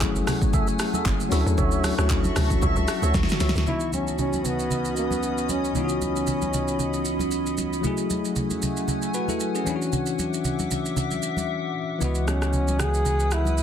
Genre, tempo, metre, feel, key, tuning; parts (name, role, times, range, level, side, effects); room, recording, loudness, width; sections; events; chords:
amapiano; 115 BPM; 4/4; swing 55% on 16ths; C# minor; A4 = 439 Hz
bell-like tine electric piano; accompaniment; 0.0-13.6 s; C#2 to D#5; -28 LUFS; left 5 dB; medium stereo tremolo
glassy FM pad; sustained chords; 0.0-13.6 s; A3 to D#6; -30 LUFS; right 1 dB; ensemble chorus, built-in reverb, sidechain pumping
hollow log drum bass; bass; 0.0-3.7 s; F#1 to E2; -24 LUFS; right 1 dB
deep house drum kit; drums; 0.0-13.6 s; handclaps, hi-hat, kick drum, rim click, shaker, snare drum; -28 LUFS; right 1 dB; soft clipping on snare
congas; percussion; 0.2-13.6 s; -31 LUFS; right 2 dB
mellow tonewheel organ; stabs; 0.5-3.5 s; F#4 to E5; -32 LUFS; right 2 dB; slow rotary speaker, digital delay
mellow trombone; melody; 3.7-7.3, 12.0-13.6 s; B3 to G#4; -28 LUFS; equal; digital delay
warm sub bass; bass; 12.0-13.6 s; C#2; -24 LUFS; equal
light reverb, digital ambience; dense, heavily limited modern master; -22 LUFS; side -9 dB against mid
0.0-3.7 A section; 3.7-13.6 B section
drop 0.0-3.7; drum fill 3.1-3.7; break 11.5-12.0
0.0 F#m9; 1.3 Dmaj9; 3.7 C#m11; 7.8 F#m9; 9.7 Dmaj9; 12.0 C#m11